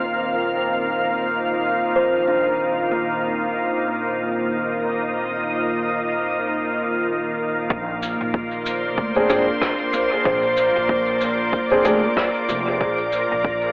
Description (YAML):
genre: ambient dub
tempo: 94 BPM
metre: 4/4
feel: swing 58% on 16ths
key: Bb major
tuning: A4 = 440 Hz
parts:
  - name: soft additive organ-like pad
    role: sustained chords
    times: 0.0-13.7 s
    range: Bb2 to F5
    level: -24 LUFS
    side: equal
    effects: ensemble chorus, built-in reverb
  - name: bubbling stepped-filter texture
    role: texture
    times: 0.0-7.7 s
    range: C4 to C5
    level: -34 LUFS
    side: equal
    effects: chorus, built-in reverb
  - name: kalimba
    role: arpeggios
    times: 2.0-5.1, 9.3-12.4 s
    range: Bb3 to C5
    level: -27 LUFS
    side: equal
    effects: dub echo
  - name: upright bass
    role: bass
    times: 7.7-13.7 s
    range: F1 to D2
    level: -33 LUFS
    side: equal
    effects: tube saturation
  - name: electronic kick drum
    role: drums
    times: 7.7-13.6 s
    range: none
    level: -27 LUFS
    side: equal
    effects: overdrive
  - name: shaker and rim click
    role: drums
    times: 8.0-13.3 s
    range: none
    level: -32 LUFS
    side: equal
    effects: dub echo
  - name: dark upright piano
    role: stabs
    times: 9.2-12.0 s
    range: C4 to Ab4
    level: -25 LUFS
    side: equal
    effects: dub echo
room: moderate huge ambient reverb, RT60 4.3 s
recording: telephone sound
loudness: -21 LUFS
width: mono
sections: 0.0-7.7 A section; 7.7-13.7 B section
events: none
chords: 0.0 Ebsus2/Bb; 7.7 Bbadd9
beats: | 0.04 0.68 1.32 1.96 | 2.59 3.23 3.87 4.51 | 5.15 5.79 6.42 7.06 | 7.70 8.34 8.98 9.62 | 10.25 10.89 11.53 12.17 | 12.81 13.45